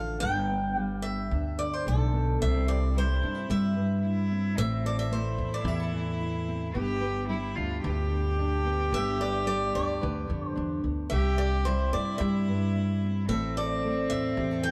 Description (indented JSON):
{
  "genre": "acoustic folk duo or small band",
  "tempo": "110 BPM",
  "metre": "4/4",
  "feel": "straight",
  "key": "C major",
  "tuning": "A4 = 443 Hz",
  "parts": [
    { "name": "picked swing-style acoustic guitar", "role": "melody", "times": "0.0-14.7 s", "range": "A4 to G5", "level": "-35 LUFS", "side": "equal", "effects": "none" },
    { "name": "nylon-string guitar", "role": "accompaniment", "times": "0.0-14.7 s", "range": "G2 to B4", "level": "-36 LUFS", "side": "equal", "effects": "none" },
    { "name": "upright bass", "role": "bass", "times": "0.0-14.7 s", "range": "G1 to G2", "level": "-31 LUFS", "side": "equal", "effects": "none" },
    { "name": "warm cello", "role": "second line", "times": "2.4-14.7 s", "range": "C4 to G4", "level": "-36 LUFS", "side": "equal", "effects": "none" }
  ],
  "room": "moderate spring reverb, RT60 2.8 s",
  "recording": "heard from further back in the room",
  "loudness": "-28 LUFS",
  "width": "mono",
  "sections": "0.0-2.4 A section; 2.4-14.7 B section",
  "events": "steel-string acoustic guitar solo 0.0-2.4",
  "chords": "0.2 Gadd9; 2.4 C; 4.6 Am; 6.8 G; 11.1 C; 13.3 Am",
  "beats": "| 0.22 0.77 1.31 1.85 | 2.40 2.94 3.49 4.03 | 4.58 5.12 5.67 6.21 | 6.75 7.30 7.84 8.39 | 8.93 9.48 10.02 10.57 | 11.11 11.65 12.20 12.74 | 13.29 13.83 14.37"
}